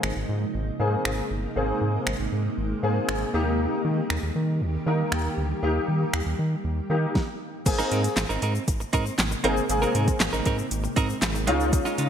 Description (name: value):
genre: dance-pop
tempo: 118 BPM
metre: 4/4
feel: straight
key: Ab major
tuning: A4 = 444 Hz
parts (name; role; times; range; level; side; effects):
- warm baby grand piano; accompaniment; 0.0-12.1 s; Bb3 to Bb4; -28 LUFS; left 2 dB; ensemble chorus, sidechain pumping
- granular cloud pad; sustained chords; 0.0-12.1 s; C3 to G4; -32 LUFS; right 1 dB; built-in reverb, sidechain pumping
- round analog bass; bass; 0.0-12.1 s; G1 to Eb3; -27 LUFS; equal; sidechain pumping
- smooth R&B drum kit; drums; 0.0-12.1 s; crash cymbal, finger snaps, handclaps, hi-hat, kick drum, snare drum; -27 LUFS; equal; overdrive
- direct-recorded clean electric guitar; riff; 7.7-12.1 s; Ab3 to Bb4; -29 LUFS; right 4 dB; wide subtle chorus
- tube shaker; percussion; 7.7-12.1 s; none; -39 LUFS; left 11 dB; none
room: moderate lush hall reverb, RT60 2.4 s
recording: bright 1980s-style digital production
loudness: -23 LUFS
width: side -8 dB against mid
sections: 0.0-7.7 A section; 7.7-12.1 B section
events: stop 7.2-7.7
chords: 0.0 Abadd9; 3.3 Eb; 7.7 Abadd9; 11.5 Dbadd9